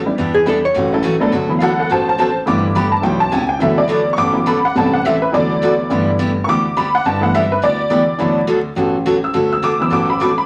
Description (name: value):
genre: country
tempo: 210 BPM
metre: 4/4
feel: swing 60% on 8ths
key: D major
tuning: A4 = 440 Hz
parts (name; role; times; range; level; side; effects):
- dark concert grand piano; bass; 0.0-10.4 s; G1 to E2; -24 LUFS; equal; none
- honky-tonk upright piano; accompaniment; 0.1-10.5 s; C3 to E6; -18 LUFS; equal; none
- picked steel-string acoustic guitar; accompaniment; 0.2-10.3 s; C#3 to A4; -22 LUFS; equal; none
- archtop guitar, miked and amplified; melody; 0.3-0.9 s; G#4 to C#5; -16 LUFS; equal; none
room: wet studio reverb, RT60 0.8 s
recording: vinyl crackle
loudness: -16 LUFS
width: mono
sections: 0.0-1.3 A section; 1.3-10.5 A section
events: hollow-body jazz guitar solo 0.0-1.3; honky-tonk piano solo 1.3-10.5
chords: 0.2 Em7; 0.7 A6; 1.3 D6; 2.5 G6; 3.6 D6; 4.8 Am7; 5.3 D6; 5.9 G6; 8.2 D6